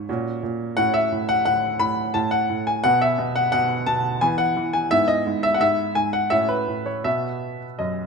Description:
classical-period piano sonatina; 86 BPM; 3/4; rubato; E major; A4 = 440 Hz
clear baby grand piano; solo; 0.0-8.1 s; F#2 to B5; -19 LUFS; equal
moderate recital hall reverb, RT60 1.5 s; close, detailed microphones; -19 LUFS; side -4 dB against mid
0.0-8.1 A section
0.1 F#/A#; 0.8 F#m/A; 2.8 B5; 4.2 E5; 4.9 E/G#; 6.3 F#m/A; 7.1 B
0.08 | 0.77 1.46 2.15 | 2.84 3.52 4.22 | 4.92 5.61 6.32 | 7.06 7.80

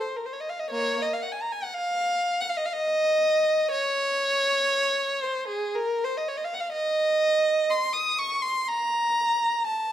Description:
classical, free, expressive piece for unaccompanied violin; 60 BPM; 3/4; rubato; Bb minor; A4 = 439 Hz
warm violin; solo; 0.0-9.9 s; Bb3 to Eb6; -23 LUFS; equal
moderate recital hall reverb, RT60 1.3 s; -23 LUFS; side -11 dB against mid
0.0-9.9 A section
| 0.70 1.72 2.71 | 3.72 4.74 5.74 | 6.71 7.68 8.68 | 9.67

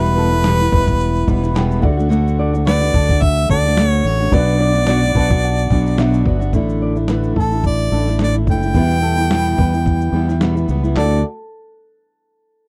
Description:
acoustic pop; 108 BPM; 4/4; swing 55% on 16ths; D major; A4 = 440 Hz
bright harmonica; melody; 0.0-11.2 s; A4 to G5; -22 LUFS; equal
dark upright piano; accompaniment; 0.0-11.2 s; A3 to B5; -31 LUFS; equal
fingerpicked steel-string acoustic guitar; accompaniment; 0.0-11.2 s; E2 to F#4; -22 LUFS; equal
flamenco guitar; arpeggios; 0.0-11.2 s; G4 to D5; -30 LUFS; equal
fingered electric bass; bass; 0.0-11.2 s; E1 to E2; -20 LUFS; equal
dusty soul sampler-style drum kit; drums; 0.1-11.1 s; handclaps, kick drum, shaker, snare drum; -20 LUFS; equal
little or no reverb; dry, close 1970s-style studio recording; -16 LUFS; mono
0.0-6.5 A section; 6.5-11.0 B section; 11.0-12.7 C section
upright piano fill 1.0-2.1, 4.9-6.5
0.0 Em; 1.8 D; 4.3 Bm; 6.5 Asus4; 8.7 Em; 11.0 D
0.45 1.00 1.55 | 2.11 2.66 3.21 3.77 | 4.32 4.87 5.43 5.98 | 6.53 7.09 7.64 8.20 | 8.75 9.30 9.86 10.41 | 10.97

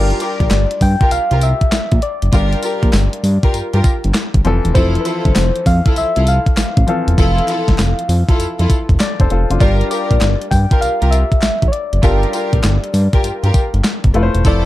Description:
R&B, new jack swing; 99 BPM; 4/4; swing 66% on 16ths; G dorian; A4 = 439 Hz
soft struck synth lead; melody; 0.0-14.7 s; B4 to G5; -21 LUFS; left 1 dB; chorus, tape echo
warm baby grand piano; accompaniment; 0.0-14.7 s; E3 to D5; -24 LUFS; left 3 dB
warm symphonic string section; stabs; 0.0-14.6 s; E4 to Bb4; -23 LUFS; equal; tape echo
fat analog bass; bass; 0.0-14.7 s; E1 to G2; -15 LUFS; equal
crisp 8-bit digital drum machine; drums; 0.1-14.6 s; handclaps, hi-hat, kick drum, snare drum, tambourine; -15 LUFS; equal; overdrive
group handclap; percussion; 0.5-14.0 s; -33 LUFS; left 2 dB
little or no reverb; dark, warm production; -12 LUFS; side -15 dB against mid
0.0-14.7 A section
0.0 Gm7; 4.5 Fmaj7; 9.6 Gm7; 14.1 Fmaj7
0.51 1.12 1.72 | 2.33 2.94 3.54 4.15 | 4.75 5.36 5.96 6.57 | 7.18 7.78 8.39 8.99 | 9.60 10.21 10.81 11.42 | 12.03 12.63 13.24 13.84 | 14.45

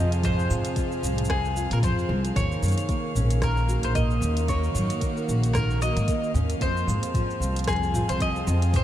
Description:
folktronica; 113 BPM; 4/4; swing 56% on 16ths; Eb dorian; A4 = 440 Hz
mandolin; melody; 0.0-8.8 s; Ab4 to Eb5; -30 LUFS; left 1 dB; vintage 12-bit sampler grit, analog delay
muted string quartet; sustained chords; 0.0-8.8 s; C3 to F5; -33 LUFS; right 2 dB; vintage 12-bit sampler grit
nylon-string guitar; arpeggios; 0.0-8.8 s; F2 to Gb4; -31 LUFS; right 1 dB; lush chorus, analog delay
upright bass; bass; 0.0-8.8 s; Bb1 to Bb2; -24 LUFS; equal
organic electronic drum kit; drums; 0.1-8.8 s; hi-hat, rim click, shaker, toms; -33 LUFS; right 1 dB
electronic kick drum; drums; 0.2-8.8 s; -28 LUFS; equal
light reverb, small room ambience; -22 LUFS; side -12 dB against mid
0.0-8.8 A section
0.0 Fm; 2.4 Ebm7; 6.6 Fm
| 0.23 0.77 1.30 1.83 | 2.36 2.89 3.42 3.95 | 4.48 5.01 5.54 6.08 | 6.61 7.14 7.67 8.20 | 8.73

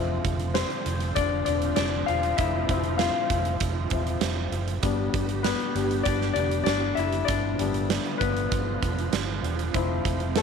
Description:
piano-driven pop; 98 BPM; 4/4; straight; D dorian; A4 = 435 Hz
warm grand piano; accompaniment; 0.0-10.4 s; F3 to F5; -27 LUFS; left 12 dB
dark studio string section; sustained chords; 0.0-10.4 s; D3 to G4; -33 LUFS; right 13 dB
vintage muted fingered electric bass; bass; 0.0-10.4 s; E1 to G1; -29 LUFS; right 1 dB
huge arena drum kit; drums; 0.2-10.4 s; hi-hat, kick drum, snare drum; -30 LUFS; right 6 dB
light reverb, small room ambience; 1960s-style stereo with parts hard left and right; -23 LUFS; side -6 dB against mid
0.0-10.4 A section
grand piano solo 0.0-10.4
0.0 Dm7; 4.8 G; 9.7 Dm7
0.55 1.16 1.77 | 2.39 3.00 3.61 4.22 | 4.84 5.45 6.06 6.68 | 7.29 7.90 8.52 9.13 | 9.74 10.36

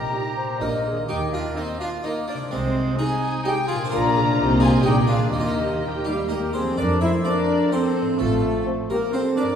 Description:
cinematic, playful, whimsical film cue; 127 BPM; 3/4; straight; Eb major; A4 = 440 Hz
harpsichord; melody; 0.0-9.6 s; C4 to E5; -30 LUFS; equal
concert flute; second line; 0.0-9.6 s; Eb4 to Bb5; -28 LUFS; left 1 dB
rich chamber violin section; second line; 0.0-9.5 s; F4 to Bb5; -33 LUFS; left 3 dB
warm cor anglais; second line; 0.0-9.5 s; G3 to G4; -30 LUFS; right 2 dB
concert harp; arpeggios; 0.0-9.6 s; G2 to Eb5; -28 LUFS; left 2 dB
dark chamber double bass section; bass; 0.0-8.6 s; A1 to F2; -27 LUFS; right 2 dB
warm chamber cello section; bass; 0.0-9.5 s; Bb2 to E4; -27 LUFS; right 2 dB
warm chamber violin section; melody; 0.1-9.6 s; G4 to G5; -34 LUFS; left 3 dB
clear clarinet; second line; 0.1-1.0 s; G4 to C5; -33 LUFS; right 1 dB
clear symphonic viola section; accompaniment; 0.1-9.5 s; Bb3 to Bb4; -29 LUFS; equal
mellow French horn section; sustained chords; 0.1-9.5 s; F3 to E4; -29 LUFS; left 2 dB
wet scoring stage reverb, RT60 1.9 s; heard from further back in the room; -20 LUFS; side -8 dB against mid
0.0-6.8 A section; 6.8-9.6 B section
0.0 Eb/Bb; 0.6 Bb; 1.1 Eb5; 2.5 Ab/C; 3.9 Bb; 4.4 Cm7; 4.9 Bb7; 5.3 Eb; 6.8 F; 8.2 F/A
0.13 0.61 | 1.09 1.56 2.04 | 2.51 2.98 3.45 | 3.92 4.38 4.85 | 5.33 5.81 6.29 | 6.78 7.25 7.72 | 8.19 8.66 9.13

